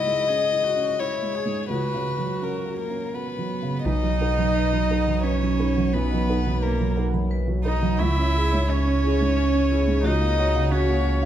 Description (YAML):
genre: neoclassical piano and strings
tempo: 86 BPM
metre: 3/4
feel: rubato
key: unclear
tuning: A4 = 440 Hz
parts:
  - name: rich violin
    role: melody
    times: 0.0-11.3 s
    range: A#4 to E5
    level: -27 LUFS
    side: left 6 dB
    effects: none
  - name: warm cello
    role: second line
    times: 0.0-11.3 s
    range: A#3 to G#4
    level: -27 LUFS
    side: right 5 dB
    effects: none
  - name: felt-muted upright piano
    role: accompaniment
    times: 0.0-11.3 s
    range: B1 to B4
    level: -26 LUFS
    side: right 3 dB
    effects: none
  - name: vibraphone with medium hard mallets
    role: arpeggios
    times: 3.9-11.3 s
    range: C#4 to B5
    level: -33 LUFS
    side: equal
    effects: none
  - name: warm sub bass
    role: bass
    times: 3.9-11.3 s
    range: B1 to C#2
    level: -24 LUFS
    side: equal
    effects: none
room: wet recital hall reverb, RT60 1.8 s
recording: dark, warm production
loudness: -20 LUFS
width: side -10 dB against mid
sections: 0.0-3.9 A section; 3.9-11.3 A section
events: none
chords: 0.0 C#m; 1.7 F#5/C#; 3.9 B; 8.0 C#m; 10.0 F#/C#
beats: 0.28 0.99 | 1.69 2.42 3.14 | 3.85 4.55 5.24 | 5.93 6.63 7.31 | 8.00 8.69 9.37 | 10.05 10.72